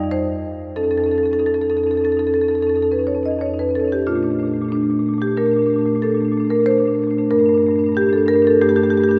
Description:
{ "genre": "classical, contemporary piece for solo marimba", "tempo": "92 BPM", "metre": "5/4", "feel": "rubato", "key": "Bb major", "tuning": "A4 = 440 Hz", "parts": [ { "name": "marimba with medium hard mallets", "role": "solo", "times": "0.0-9.2 s", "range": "F2 to Eb5", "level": "-18 LUFS", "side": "equal", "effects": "none" } ], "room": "wet cathedral reverb, RT60 4.8 s", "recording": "heard from further back in the room", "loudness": "-18 LUFS", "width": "mono", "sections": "0.0-9.2 A section", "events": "none", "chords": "0.0 F7sus2; 0.8 Faug7; 4.1 Bbmaj7; 7.3 Gmadd9" }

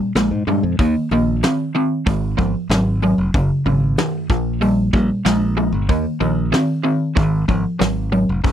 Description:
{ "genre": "classic rock", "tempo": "94 BPM", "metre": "4/4", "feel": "straight", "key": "unclear", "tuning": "A4 = 440 Hz", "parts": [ { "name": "overdriven semi-hollow guitar", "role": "riff", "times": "0.0-8.5 s", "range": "Gb2 to C4", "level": "-18 LUFS", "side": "equal", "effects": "none" }, { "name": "modern bright fingered electric bass", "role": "bass", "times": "0.2-8.5 s", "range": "F1 to Ab2", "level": "-21 LUFS", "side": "equal", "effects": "none" }, { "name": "soft brush drum kit", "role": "drums", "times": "0.2-8.5 s", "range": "hi-hat, kick drum, snare drum", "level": "-18 LUFS", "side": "equal", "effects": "none" } ], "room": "light reverb", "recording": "dry, close 1970s-style studio recording", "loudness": "-16 LUFS", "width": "side -10 dB against mid", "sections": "0.0-8.5 A section", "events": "none", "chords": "0.0 Bb5; 0.8 Eb5; 2.1 Ab5; 3.3 Gb5; 4.3 Bb5; 5.9 Eb5; 7.2 Ab5" }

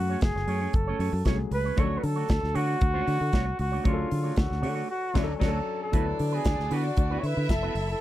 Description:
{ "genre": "disco", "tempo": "116 BPM", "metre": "4/4", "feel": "straight", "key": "unclear", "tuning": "A4 = 440 Hz", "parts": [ { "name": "warm flugelhorn", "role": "melody", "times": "0.0-8.0 s", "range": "E#4 to C#5", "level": "-31 LUFS", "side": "equal", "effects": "none" }, { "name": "warm concert grand piano", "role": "accompaniment", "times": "0.0-8.0 s", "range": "E#3 to B4", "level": "-37 LUFS", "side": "left 10 dB", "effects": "none" }, { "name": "fingered electric bass", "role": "bass", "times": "0.0-7.9 s", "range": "E#1 to D3", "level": "-28 LUFS", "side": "equal", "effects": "none" }, { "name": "electric guitar with an envelope filter", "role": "accompaniment", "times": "0.1-7.9 s", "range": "A3 to C#5", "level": "-34 LUFS", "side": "right 9 dB", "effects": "none" }, { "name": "modern studio drum kit", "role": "drums", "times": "0.2-7.9 s", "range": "crash cymbal, hi-hat, kick drum, snare drum", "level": "-26 LUFS", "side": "equal", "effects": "none" }, { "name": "warm studio violin section", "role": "second line", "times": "5.9-8.0 s", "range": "D4 to E5", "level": "-34 LUFS", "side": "left 4 dB", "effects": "none" } ], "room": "little or no reverb", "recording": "dry, close 1970s-style studio recording", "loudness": "-24 LUFS", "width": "side -14 dB against mid", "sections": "0.0-5.9 A section; 5.9-8.0 B section", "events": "band accent 4.9-5.9", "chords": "0.0 F#madd9; 1.8 Dmaj7; 5.9 D69" }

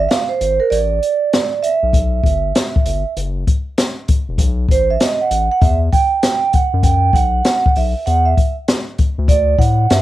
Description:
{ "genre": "hip hop, jazz-hop", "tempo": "98 BPM", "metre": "4/4", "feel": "swing 65% on 16ths", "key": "E minor", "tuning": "A4 = 440 Hz", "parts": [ { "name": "vibraphone with medium mallets", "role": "accompaniment", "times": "0.0-10.0 s", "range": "A#4 to G5", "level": "-16 LUFS", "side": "right 5 dB", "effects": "cassette tape, plate reverb" }, { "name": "round analog bass", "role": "bass", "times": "0.0-10.0 s", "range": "E1 to A2", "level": "-17 LUFS", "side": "left 2 dB", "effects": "none" }, { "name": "open jazz drum kit", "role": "drums", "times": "0.1-10.0 s", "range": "hi-hat, kick drum, snare drum", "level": "-15 LUFS", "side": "left 2 dB", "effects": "cassette tape" } ], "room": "light reverb", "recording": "home recording on cassette", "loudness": "-13 LUFS", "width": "side -14 dB against mid", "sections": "0.0-10.0 A section", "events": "vibraphone solo 0.0-10.0; kick muted 0.7-1.9", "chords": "0.0 G#6; 0.7 A9sus4 (rootless); 3.2 Esus2; 4.4 Am69; 5.6 Em9" }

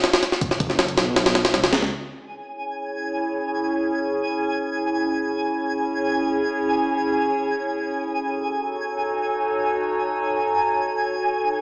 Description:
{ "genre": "drum and bass, jungle", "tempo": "free time", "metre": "none", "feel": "none", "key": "C# minor", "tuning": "A4 = 439 Hz", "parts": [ { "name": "jungle sampler-style drum kit", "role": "drums", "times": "0.0-1.9 s", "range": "hi-hat, kick drum, snare drum", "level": "-18 LUFS", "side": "equal", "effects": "none" }, { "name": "warbly tape-like pad", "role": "sustained chords", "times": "0.8-11.6 s", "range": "C#4 to C#5", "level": "-24 LUFS", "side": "equal", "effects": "chorus, built-in reverb, phaser" }, { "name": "dark detuned saw bass", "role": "bass", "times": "0.6-1.9 s", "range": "F#1 to C#2", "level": "-26 LUFS", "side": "equal", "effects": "tube saturation" }, { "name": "twinkling granular texture", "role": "texture", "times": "2.3-11.6 s", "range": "G#5", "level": "-25 LUFS", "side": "equal", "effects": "built-in reverb" } ], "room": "wet lush hall reverb, RT60 1.7 s", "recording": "played on a big sound system in a bare room, large studio reverb, small speaker sound", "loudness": "-20 LUFS", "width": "side -24 dB against mid", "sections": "0.0-1.9 A section; 1.9-11.6 B section", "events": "drop 0.0-1.9; kick drops out 1.2-1.9", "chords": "0.0 B7; 1.9 C#m; 7.9 D#m7b5" }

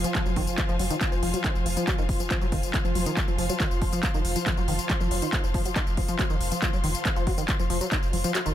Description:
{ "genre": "driving peak-time techno", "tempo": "139 BPM", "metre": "4/4", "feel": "straight", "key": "F phrygian", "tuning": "A4 = 442 Hz", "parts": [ { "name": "tight sequenced synth", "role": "riff", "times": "0.0-8.5 s", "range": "Eb3 to Gb3", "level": "-31 LUFS", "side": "left 1 dB", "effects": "chorus, overdrive, sidechain pumping, dub echo" }, { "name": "saturated sub bass", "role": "bass", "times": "0.0-8.5 s", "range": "F1", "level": "-30 LUFS", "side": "equal", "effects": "sidechain pumping, low-pass filter" }, { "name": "analog drone", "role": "drone", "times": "0.0-8.5 s", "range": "F3", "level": "-35 LUFS", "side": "right 2 dB", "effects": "chorus, sidechain pumping" }, { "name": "techno drum kit", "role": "drums", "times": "0.0-8.5 s", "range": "handclaps, hi-hat, tambourine", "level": "-30 LUFS", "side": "equal", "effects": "overdrive, sidechain pumping on hats, sidechain pumping on perc" }, { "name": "bright studio string section", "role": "texture", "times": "0.0-8.5 s", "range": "F4 to C6", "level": "-34 LUFS", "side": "left 4 dB", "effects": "sidechain pumping" }, { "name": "electronic kick drum", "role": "drums", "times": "0.1-8.0 s", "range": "none", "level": "-27 LUFS", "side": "equal", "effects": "overdrive" } ], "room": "light reverb", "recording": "none", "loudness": "-23 LUFS", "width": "side -11 dB against mid", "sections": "0.0-8.5 A section", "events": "kick drops out 8.3", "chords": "0.0 Fm" }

